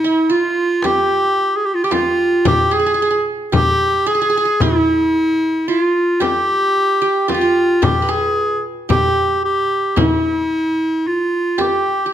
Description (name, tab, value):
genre	Turkish makam ensemble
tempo	112 BPM (eighths)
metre	10/8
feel	straight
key	G makam hicaz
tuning	A4 = 440 Hz
part	clear clarinet	melody	0.0-12.1 s	E4-42c to Ab4	-15 LUFS	equal	none
part	qanun	second line	0.0-12.1 s	E4-40c to B4	-22 LUFS	right 3 dB	none
part	darbuka	percussion	0.3-12.0 s	none	-24 LUFS	left 2 dB	none
part	frame drum	percussion	0.8-11.8 s	none	-21 LUFS	left 3 dB	none
room	moderate recital hall reverb, RT60 1.6 s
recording	none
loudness	-14 LUFS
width	side -10 dB against mid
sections	0.0-12.1 A section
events	none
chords	none